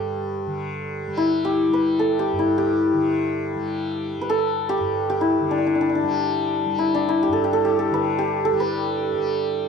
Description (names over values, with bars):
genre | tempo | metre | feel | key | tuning
indian classical, Hindustani | free time | none | none | G raga bhupali | A4 = 441 Hz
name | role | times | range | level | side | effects
santur | melody | 0.0-9.7 s | D4 to B4 | -20 LUFS | left 1 dB | slapback echo
tanpura | drone | 0.0-9.7 s | G2 to G3 | -31 LUFS | left 1 dB | none
room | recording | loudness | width
light reverb | dark, warm production | -20 LUFS | side -6 dB against mid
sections
0.0-9.7 A section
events
none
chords
none